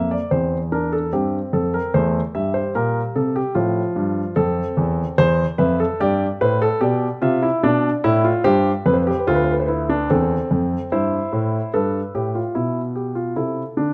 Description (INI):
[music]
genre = classical, baroque-style 3-part fugue for grand piano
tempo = 74 BPM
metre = 4/4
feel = straight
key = unclear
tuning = A4 = 440 Hz
[part]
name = dark grand piano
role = solo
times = 0.0-13.9 s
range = D2 to E5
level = -20 LUFS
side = equal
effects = none
[sound]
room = moderate recital hall reverb, RT60 1.4 s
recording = close, detailed microphones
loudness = -20 LUFS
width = mono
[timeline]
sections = 0.0-11.7 A section; 11.7-13.9 B section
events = none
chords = 0.3 C/E; 1.9 C7/E; 3.6 F; 5.2 C/E; 6.8 G/B; 8.4 G7; 10.1 C/E; 11.7 Em/G; 13.4 C